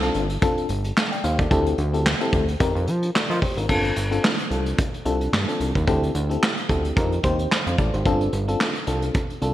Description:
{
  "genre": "early-eighties boogie funk",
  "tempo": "110 BPM",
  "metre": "4/4",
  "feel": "swing 56% on 16ths",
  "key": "G minor",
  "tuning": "A4 = 440 Hz",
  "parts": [
    { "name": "FM electric piano with auto-pan", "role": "accompaniment", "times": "0.0-9.5 s", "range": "C4 to G5", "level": "-25 LUFS", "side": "left 2 dB", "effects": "none" },
    { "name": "fat analog bass", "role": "bass", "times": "0.0-9.5 s", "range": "G1 to F3", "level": "-24 LUFS", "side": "equal", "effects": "none" },
    { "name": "vintage brush drum kit", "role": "drums", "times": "0.0-9.5 s", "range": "crash cymbal, handclaps, hi-hat, kick drum, snare drum", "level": "-23 LUFS", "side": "right 1 dB", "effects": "gated reverb" }
  ],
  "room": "moderate lush hall reverb, RT60 2.0 s",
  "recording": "bright 1980s-style digital production",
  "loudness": "-20 LUFS",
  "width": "side -13 dB against mid",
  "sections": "0.0-3.7 A section; 3.7-9.5 B section",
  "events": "none",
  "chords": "0.0 G9sus4; 1.5 D9sus4; 2.6 F9sus4; 3.7 G9sus4; 5.9 D9sus4; 7.0 F9sus4; 8.1 G9sus4"
}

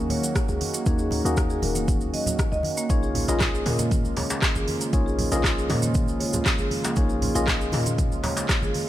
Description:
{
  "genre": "afro house",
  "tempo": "118 BPM",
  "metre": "4/4",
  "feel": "straight",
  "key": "unclear",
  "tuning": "A4 = 440 Hz",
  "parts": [
    { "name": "warm analog pad", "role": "sustained chords", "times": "0.0-8.9 s", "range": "Db3 to Gb4", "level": "-33 LUFS", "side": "right 2 dB", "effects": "chorus, sidechain pumping" },
    { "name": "tine electric piano", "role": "stabs", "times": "0.0-8.9 s", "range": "Bb3 to Eb5", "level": "-30 LUFS", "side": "left 2 dB", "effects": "sidechain pumping, ping-pong delay" },
    { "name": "warm 808-style bass", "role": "bass", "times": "0.0-8.7 s", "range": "Eb1 to Bb2", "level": "-29 LUFS", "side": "equal", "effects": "sidechain pumping" },
    { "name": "marimba with medium mallets", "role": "arpeggios", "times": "0.1-8.7 s", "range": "Bb3 to Eb5", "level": "-30 LUFS", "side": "right 1 dB", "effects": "sidechain pumping, ping-pong delay" },
    { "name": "afro-pop drum kit", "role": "drums", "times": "0.1-8.9 s", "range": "handclaps, hi-hat, rim click", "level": "-29 LUFS", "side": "equal", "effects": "none" },
    { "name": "congas", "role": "percussion", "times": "0.1-8.9 s", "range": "none", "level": "-32 LUFS", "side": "right 1 dB", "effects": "none" },
    { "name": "cabasa", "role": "percussion", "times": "0.2-8.7 s", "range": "none", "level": "-34 LUFS", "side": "right 4 dB", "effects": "none" },
    { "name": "electronic kick drum", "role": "drums", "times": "0.4-8.6 s", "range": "none", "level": "-24 LUFS", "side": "equal", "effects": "none" },
    { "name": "djembe", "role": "percussion", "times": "3.3-8.5 s", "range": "none", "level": "-35 LUFS", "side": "left 3 dB", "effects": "none" }
  ],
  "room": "light reverb, small room ambience",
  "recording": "none",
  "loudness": "-21 LUFS",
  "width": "side -13 dB against mid",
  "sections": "0.0-8.9 A section",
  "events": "none",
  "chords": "0.0 Ebm7; 2.9 Bbm7"
}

